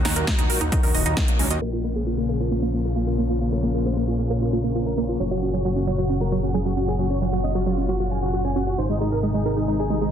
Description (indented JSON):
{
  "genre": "uplifting trance",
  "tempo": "134 BPM",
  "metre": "4/4",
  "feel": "straight",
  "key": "Bb minor",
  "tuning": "A4 = 441 Hz",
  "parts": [
    { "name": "analog string pad", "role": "sustained chords", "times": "0.0-10.1 s", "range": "Bb2 to Ab4", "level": "-27 LUFS", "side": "left 1 dB", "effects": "ensemble chorus, sidechain pumping" },
    { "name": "tight sequenced synth", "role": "arpeggios", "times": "0.0-10.1 s", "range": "Db3 to Eb5", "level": "-27 LUFS", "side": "right 4 dB", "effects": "chorus, sidechain pumping, ping-pong delay" },
    { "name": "fat analog bass", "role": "bass", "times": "0.0-10.1 s", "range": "Eb1 to Eb2", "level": "-26 LUFS", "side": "equal", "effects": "sidechain pumping" },
    { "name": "big-room dance drum kit", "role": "drums", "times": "0.1-1.6 s", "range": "hi-hat, snare drum", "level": "-26 LUFS", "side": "right 2 dB", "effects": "overdrive" },
    { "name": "electronic kick drum", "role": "drums", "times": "0.3-1.3 s", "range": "none", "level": "-22 LUFS", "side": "equal", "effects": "overdrive" },
    { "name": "dense compressed supersaw", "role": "melody", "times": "1.6-10.1 s", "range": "Bb3 to Ab5", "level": "-27 LUFS", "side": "equal", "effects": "cassette tape, sidechain pumping, low-pass filter, ping-pong delay" },
    { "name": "downlifter", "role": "sound effects", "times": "1.7-5.2 s", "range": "none", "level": "-46 LUFS", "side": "left 2 dB", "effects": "none" }
  ],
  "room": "light reverb, digital ambience",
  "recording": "dense, heavily limited modern master, low-pass filter",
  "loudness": "-20 LUFS",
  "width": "side -9 dB against mid",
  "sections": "0.0-1.6 A section; 1.6-10.1 B section",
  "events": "filter sweep on supersaw synth 1.6-10.1; filter sweep on synth arpeggio sound 1.6-10.1; filter sweep 1.6-10.1",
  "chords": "0.0 Ebm; 1.6 Bbm; 5.2 Gb; 8.8 Ab"
}